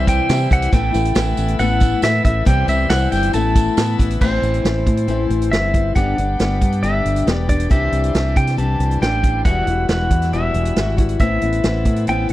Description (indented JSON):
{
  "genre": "folk rock and heartland rock",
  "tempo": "137 BPM",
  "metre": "4/4",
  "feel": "straight",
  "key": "A dorian",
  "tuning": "A4 = 441 Hz",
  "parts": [
    { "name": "pedal steel guitar", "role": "melody", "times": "0.0-12.3 s", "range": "C5 to A5", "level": "-22 LUFS", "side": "right 1 dB", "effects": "none" },
    { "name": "picked steel-string acoustic guitar", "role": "accompaniment", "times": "0.0-12.3 s", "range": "E2 to G4", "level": "-22 LUFS", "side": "left 6 dB", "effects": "none" },
    { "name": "bright tonewheel organ", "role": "sustained chords", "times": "0.0-12.3 s", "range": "D4 to E5", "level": "-34 LUFS", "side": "equal", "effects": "slow rotary speaker, overdrive" },
    { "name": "fingered electric bass", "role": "bass", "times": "0.0-12.3 s", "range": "E1 to C3", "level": "-19 LUFS", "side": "equal", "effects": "none" },
    { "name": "vintage drum kit", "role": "drums", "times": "0.1-12.3 s", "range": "crash cymbal, hi-hat, kick drum, snare drum", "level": "-18 LUFS", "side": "equal", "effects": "none" },
    { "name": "tambourine", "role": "percussion", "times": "0.1-4.0 s", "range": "none", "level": "-36 LUFS", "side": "right 13 dB", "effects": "none" }
  ],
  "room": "little or no reverb",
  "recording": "dry, close 1970s-style studio recording",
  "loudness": "-15 LUFS",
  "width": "side -15 dB against mid",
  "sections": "0.0-4.2 A section; 4.2-12.3 B section",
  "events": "none",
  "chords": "0.0 C; 0.7 Asus2; 2.5 C; 3.3 Asus2; 4.2 Amadd9; 6.0 G; 7.7 Cadd9; 9.5 Emadd9; 11.2 Amadd9",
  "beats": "0.29 | 0.73 1.16 1.60 2.03 | 2.47 2.90 3.34 3.78 | 4.21 4.65 5.08 5.52 | 5.96 6.39 6.83 7.27 | 7.71 8.14 8.58 9.02 | 9.45 9.89 10.33 10.76 | 11.20 11.64 12.07"
}